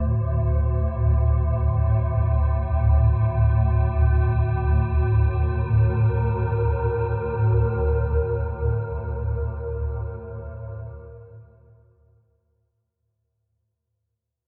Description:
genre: dark ambient drone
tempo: free time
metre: none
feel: none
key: unclear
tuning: A4 = 440 Hz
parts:
  - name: swarming drone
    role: drone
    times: 0.0-13.0 s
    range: D2 to A2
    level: -23 LUFS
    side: equal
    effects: built-in reverb
  - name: wind-like tuned noise texture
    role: texture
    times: 5.5-13.0 s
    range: Bb4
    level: -33 LUFS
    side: equal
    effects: built-in reverb
room: wet huge ambient reverb, RT60 8.0 s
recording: none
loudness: -22 LUFS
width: mono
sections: 0.0-12.9 A section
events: fade-out 7.6-12.9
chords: 0.0 D5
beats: free time

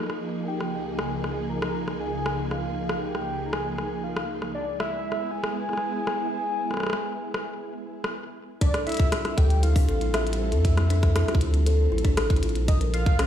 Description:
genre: IDM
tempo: 118 BPM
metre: 4/4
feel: straight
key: unclear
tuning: A4 = 439 Hz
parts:
  - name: soft string machine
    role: sustained chords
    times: 0.0-13.3 s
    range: C#2 to A4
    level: -31 LUFS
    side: right 1 dB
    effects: ensemble chorus
  - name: glitchy drum kit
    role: drums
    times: 0.0-13.3 s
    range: hi-hat, rim click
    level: -31 LUFS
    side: equal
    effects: studio reverb, tape echo
  - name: warm velvety synth lead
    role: melody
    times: 0.5-13.3 s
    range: D5 to Bb5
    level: -32 LUFS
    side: equal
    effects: chorus, tremolo, dub echo
  - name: kalimba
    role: arpeggios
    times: 8.6-13.3 s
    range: Db4 to Bb4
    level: -30 LUFS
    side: left 3 dB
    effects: digital delay
  - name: electronic kick drum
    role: drums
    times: 8.6-13.2 s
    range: none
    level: -21 LUFS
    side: equal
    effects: studio reverb
  - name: warm sub bass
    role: bass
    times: 9.4-13.3 s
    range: A1 to F2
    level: -23 LUFS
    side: equal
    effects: none
room: light reverb, digital ambience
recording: played on a big sound system in a bare room, stone room reverb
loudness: -23 LUFS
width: side -10 dB against mid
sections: 0.0-8.6 A section; 8.6-13.3 B section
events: none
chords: 0.5 C#; 4.5 E; 8.6 Dmadd9; 12.7 Bbm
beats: | 0.48 0.99 1.50 2.00 | 2.51 3.02 3.53 4.04 | 4.55 5.05 5.56 6.07 | 6.58 7.09 7.60 8.11 | 8.61 9.12 9.63 10.14 | 10.65 11.16 11.66 12.17 | 12.68 13.19

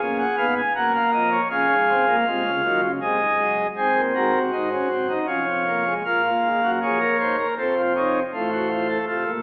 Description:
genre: classical, baroque-style 4-part fugue for pipe organ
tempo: 80 BPM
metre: 3/4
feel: straight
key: Bb minor from 6.1 s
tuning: A4 = 440 Hz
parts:
  - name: pipe organ, principal chorus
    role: solo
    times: 0.0-9.4 s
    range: Eb1 to G#5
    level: -22 LUFS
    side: equal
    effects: none
room: wet concert hall reverb, RT60 1.8 s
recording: telephone sound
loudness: -22 LUFS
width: mono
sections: 0.0-6.1 A section; 6.1-9.4 B section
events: none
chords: 0.0 C#7; 0.8 F#; 1.5 C#/E#; 3.0 G#; 3.8 G#7; 5.3 C#/E#; 6.1 Bbm; 7.6 F; 8.3 F/A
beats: 0.01 0.76 | 1.51 2.26 3.02 | 3.77 4.53 5.29 | 6.05 6.81 7.57 | 8.32 9.07

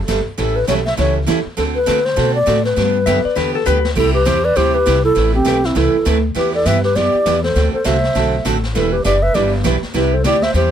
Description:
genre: country, western swing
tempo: 201 BPM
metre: 4/4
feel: swing 60% on 8ths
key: unclear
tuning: A4 = 442 Hz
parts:
  - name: upright bass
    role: bass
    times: 0.0-10.7 s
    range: E1 to D3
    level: -19 LUFS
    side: left 1 dB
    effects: none
  - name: picked steel-string acoustic guitar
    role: accompaniment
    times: 0.1-10.7 s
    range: C3 to B4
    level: -20 LUFS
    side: right 6 dB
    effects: none
  - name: vintage brush drum kit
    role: drums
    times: 0.1-10.7 s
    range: brushed snare drum, crash cymbal, hi-hat, kick drum, snare drum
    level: -26 LUFS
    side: left 2 dB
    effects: none
  - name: wooden-headed alto flute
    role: melody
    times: 0.4-10.7 s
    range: E4 to E5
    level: -17 LUFS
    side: left 1 dB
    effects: none
  - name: clean lap steel guitar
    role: second line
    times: 3.1-3.9 s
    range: A4 to E5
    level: -19 LUFS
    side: left 10 dB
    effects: none
  - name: breathy clarinet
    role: second line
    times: 4.0-10.7 s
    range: C4 to C5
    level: -21 LUFS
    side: right 3 dB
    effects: none
room: little or no reverb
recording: none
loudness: -13 LUFS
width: side -9 dB against mid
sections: 0.0-10.7 A section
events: drum fill 3.7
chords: 0.4 A7; 1.6 D7; 2.8 G; 4.0 C; 5.2 Amadd9; 6.4 Em; 7.6 D7; 8.7 Em7; 9.9 C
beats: 0.08 | 0.38 0.68 0.98 1.27 | 1.57 1.87 2.17 2.47 | 2.77 3.07 3.37 3.67 | 3.96 4.26 4.56 4.86 | 5.16 5.46 5.76 6.06 | 6.36 6.66 6.96 7.25 | 7.55 7.85 8.15 8.45 | 8.75 9.05 9.35 9.64 | 9.94 10.24 10.54

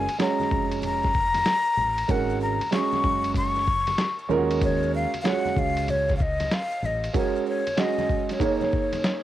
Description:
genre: hip hop, jazz-hop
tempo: 95 BPM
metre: 4/4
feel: swing 66% on 16ths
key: Eb minor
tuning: A4 = 441 Hz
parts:
  - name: breathy mellow jazz flute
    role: melody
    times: 0.0-9.2 s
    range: Db5 to Db6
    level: -26 LUFS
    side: left 2 dB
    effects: cassette tape, tape echo
  - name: dark grand piano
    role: accompaniment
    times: 0.0-9.2 s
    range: Ab3 to Db5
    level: -26 LUFS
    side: right 6 dB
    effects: cassette tape
  - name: deep dub fingered electric bass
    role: bass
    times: 0.0-7.1 s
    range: F1 to Eb2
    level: -30 LUFS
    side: left 1 dB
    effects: none
  - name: lo-fi sampler-style drum kit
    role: drums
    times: 0.1-9.2 s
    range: hi-hat, kick drum, ride cymbal, snare drum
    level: -28 LUFS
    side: left 1 dB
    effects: cassette tape
  - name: congas and maracas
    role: percussion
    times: 0.1-9.2 s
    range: none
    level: -40 LUFS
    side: left 7 dB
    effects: none
room: wet booth ambience, RT60 0.3 s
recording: home recording on cassette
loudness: -22 LUFS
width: side -13 dB against mid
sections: 0.0-9.2 A section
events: none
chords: 0.0 Gbmaj7; 2.1 Ab9sus4; 4.3 Ebm11; 7.1 Ab9sus4; 8.4 Bbm7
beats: 0.20 0.83 1.46 | 2.09 2.72 3.35 3.98 | 4.62 5.25 5.88 6.51 | 7.14 7.77 8.41 9.04

